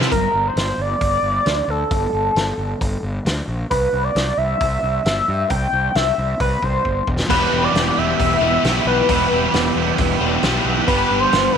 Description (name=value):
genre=indie rock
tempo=134 BPM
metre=4/4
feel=straight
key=unclear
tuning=A4 = 438 Hz
part: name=tonewheel organ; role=sustained chords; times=0.0-0.1, 7.3-11.6 s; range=G4 to D6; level=-32 LUFS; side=left 1 dB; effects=none
part: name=crunchy overdriven guitar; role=riff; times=0.0-0.1, 7.3-11.6 s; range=E2 to G4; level=-22 LUFS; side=left 16 dB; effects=none
part: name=thick fuzz guitar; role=riff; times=0.0-0.1, 7.3-11.6 s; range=B3 to G4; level=-21 LUFS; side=right 14 dB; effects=distortion, ensemble chorus, tape echo
part: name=fuzz fingered electric bass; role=bass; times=0.0-11.6 s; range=E1 to G2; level=-23 LUFS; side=equal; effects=overdrive
part: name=loose indie drum kit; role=drums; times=0.0-11.4 s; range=crash cymbal, hi-hat, kick drum, snare drum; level=-23 LUFS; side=equal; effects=none
part: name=octave-doubled lead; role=melody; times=0.1-11.6 s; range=A4 to G5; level=-19 LUFS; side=left 1 dB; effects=chorus, phaser
room=light reverb, studio reverb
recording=1960s-style stereo with parts hard left and right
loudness=-16 LUFS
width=side -7 dB against mid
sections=0.1-11.6 A section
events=drum fill 6.8-7.3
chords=0.1 Gmadd9; 3.7 C; 7.1 Em7; 10.9 Gmaj7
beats=| 0.11 0.56 1.01 1.46 | 1.91 2.36 2.81 3.26 | 3.71 4.16 4.61 5.05 | 5.50 5.95 6.40 6.85 | 7.30 7.75 8.19 8.64 | 9.09 9.54 9.98 10.43 | 10.88 11.33